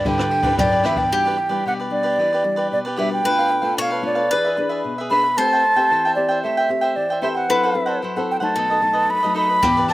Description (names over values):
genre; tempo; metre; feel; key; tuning
samba and choro; 113 BPM; 4/4; straight; E minor; A4 = 440 Hz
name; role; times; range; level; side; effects
wooden flute; melody; 0.0-9.9 s; D5 to B5; -18 LUFS; right 1 dB; none
bowl-back mandolin; second line; 0.0-9.9 s; G4 to C#5; -25 LUFS; left 3 dB; slapback echo
cavaquinho; accompaniment; 0.0-9.9 s; D4 to G5; -25 LUFS; right 1 dB; slapback echo
nylon-string guitar; accompaniment; 0.0-9.9 s; F#2 to B4; -27 LUFS; left 4 dB; slapback echo
nylon-string guitar; bass; 0.1-1.1, 9.6-9.9 s; E2 to D3; -27 LUFS; equal; none
jazz brush drum kit; drums; 0.1-1.1, 9.6-9.9 s; kick drum, ride cymbal, rim click; -26 LUFS; equal; none
room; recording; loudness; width
little or no reverb; none; -17 LUFS; side -16 dB against mid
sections
0.0-1.1 A section; 1.1-9.9 B section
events
none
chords
0.0 G6; 1.1 Em9; 3.3 Bm7b5; 4.3 E7; 5.4 Am9; 7.5 F#m7b5; 8.6 B7